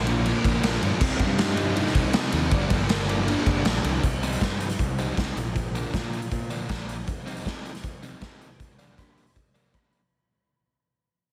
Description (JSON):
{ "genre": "indie rock", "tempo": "158 BPM", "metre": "4/4", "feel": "straight", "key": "C minor", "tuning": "A4 = 438 Hz", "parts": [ { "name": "fuzz guitar", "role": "riff", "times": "0.0-10.0 s", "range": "G2 to Eb4", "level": "-31 LUFS", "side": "equal", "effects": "distortion" }, { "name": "fuzz fingered electric bass", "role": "bass", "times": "0.0-7.0 s", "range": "G1 to Bb2", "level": "-31 LUFS", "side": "equal", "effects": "overdrive" }, { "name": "raw garage drum kit", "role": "drums", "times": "0.1-10.0 s", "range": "crash cymbal, hi-hat, kick drum, ride cymbal, rim click, snare drum", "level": "-28 LUFS", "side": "equal", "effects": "none" } ], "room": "small room reverb", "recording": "heavily compressed radio sound, multiband compression", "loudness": "-25 LUFS", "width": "mono", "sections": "0.0-4.0 A section; 4.0-10.1 B section", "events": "fade-out 4.0-10.1", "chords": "0.0 Bb; 1.0 Cm; 2.5 Gm; 4.0 Cm; 5.4 Bb; 7.1 Cm; 8.6 Gm" }